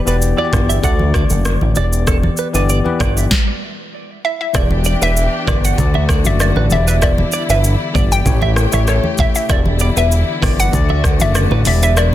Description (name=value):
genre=afrobeats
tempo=97 BPM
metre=4/4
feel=straight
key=E dorian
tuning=A4 = 440 Hz
part: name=bell-like tine electric piano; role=accompaniment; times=0.0-12.1 s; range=D3 to D5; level=-22 LUFS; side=left 6 dB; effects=none
part: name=direct-recorded clean electric guitar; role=riff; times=0.1-12.1 s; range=A4 to F#5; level=-24 LUFS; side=right 8 dB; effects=analog chorus, tape echo
part: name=fat analog bass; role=bass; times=0.1-12.1 s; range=E1 to D2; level=-16 LUFS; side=equal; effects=none
part: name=afro-pop drum kit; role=drums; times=0.1-12.1 s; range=hi-hat, kick drum, rim click, shaker, snare drum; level=-18 LUFS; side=equal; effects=soft clipping on snare
part: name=congas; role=percussion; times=0.4-12.1 s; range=none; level=-23 LUFS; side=right 1 dB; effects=none
part: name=hollow square pluck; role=melody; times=4.2-12.1 s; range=C#5 to G5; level=-20 LUFS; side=equal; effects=chorus, tape echo
part: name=warm studio string section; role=sustained chords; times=4.5-12.1 s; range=C#3 to G4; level=-26 LUFS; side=left 1 dB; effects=none
room=little or no reverb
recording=dense, heavily limited modern master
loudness=-12 LUFS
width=side -13 dB against mid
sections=0.0-4.5 A section; 4.5-12.1 B section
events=stop 3.3-4.5; kick muted 12.0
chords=0.0 Em7; 0.8 D; 1.8 Em7; 3.3 N.C.; 4.5 Em7; 5.8 D; 6.7 Em7; 8.3 A7; 9.5 Em7; 10.7 D